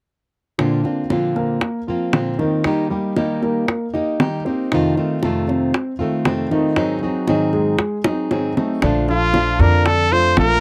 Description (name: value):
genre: latin, Cuban son and guajira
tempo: 116 BPM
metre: 4/4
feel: straight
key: Bb major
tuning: A4 = 439 Hz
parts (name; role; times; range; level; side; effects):
- fingerpicked plugged-in steel-string acoustic guitar; accompaniment; 0.6-10.6 s; F2 to Ab4; -24 LUFS; equal; none
- dark baby grand piano; arpeggios; 0.6-10.5 s; D3 to Eb5; -24 LUFS; equal; tape echo
- bongos; percussion; 0.6-10.6 s; none; -23 LUFS; equal; none
- upright bass; bass; 8.8-10.6 s; Bb1 to F2; -20 LUFS; equal; none
- clear trumpet; melody; 9.1-10.6 s; F4 to C5; -19 LUFS; equal; none
room: light reverb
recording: dry, close 1970s-style studio recording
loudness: -19 LUFS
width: mono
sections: 0.6-8.8 A section; 8.8-10.6 B section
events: drum fill 8.1-8.8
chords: 0.6 Bbadd9; 2.7 Eb; 4.7 F7; 6.8 Ab7; 8.8 Bbmaj7